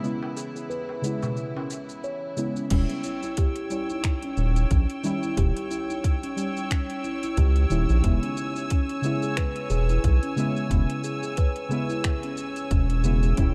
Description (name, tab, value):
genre	organic downtempo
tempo	90 BPM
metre	4/4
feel	swing 57% on 16ths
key	unclear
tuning	A4 = 441 Hz
part	deep mellow chord stab	accompaniment	0.0-13.5 s	C#3 to E4	-33 LUFS	equal	chorus, sidechain pumping, digital delay
part	rich chamber string section	sustained chords	0.0-13.5 s	E3 to Fb6	-37 LUFS	equal	sidechain pumping
part	steel tongue drum	arpeggios	0.0-13.5 s	C#4 to C#5	-34 LUFS	equal	digital delay
part	deep house drum kit	drums	0.0-13.5 s	crash cymbal, finger snaps, hi-hat, shaker	-39 LUFS	equal	overdrive
part	darbuka	percussion	0.2-1.9 s	none	-38 LUFS	equal	none
part	round analog bass	bass	2.7-13.5 s	Eb1 to Db2	-24 LUFS	equal	sidechain pumping
part	electronic kick drum	drums	2.7-13.5 s	none	-25 LUFS	equal	none
room	light reverb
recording	dark, warm production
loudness	-26 LUFS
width	mono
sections	0.0-2.7 A section; 2.7-13.5 B section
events	none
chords	0.0 E6; 2.7 Eb7b9; 8.0 E6